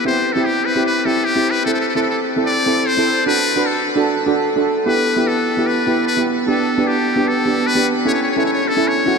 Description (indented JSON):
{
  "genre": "calypso",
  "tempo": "150 BPM",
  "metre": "4/4",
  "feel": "straight",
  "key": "unclear",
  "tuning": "A4 = 438 Hz",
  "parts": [
    { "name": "trumpet with metal mute", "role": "melody", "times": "0.0-9.2 s", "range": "G4 to D5", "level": "-19 LUFS", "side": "left 2 dB", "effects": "none" },
    { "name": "steel pan", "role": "accompaniment", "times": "0.1-9.2 s", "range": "B3 to B4", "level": "-17 LUFS", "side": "right 1 dB", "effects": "none" }
  ],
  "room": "wet huge ambient reverb, RT60 7.6 s",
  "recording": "in a vast, echoing space",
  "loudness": "-15 LUFS",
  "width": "side -5 dB against mid",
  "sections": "0.0-9.2 A section",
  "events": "muted trumpet solo 0.0-9.2",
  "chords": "0.1 C; 1.7 Am; 3.3 D; 4.9 Em; 6.5 G; 8.1 A"
}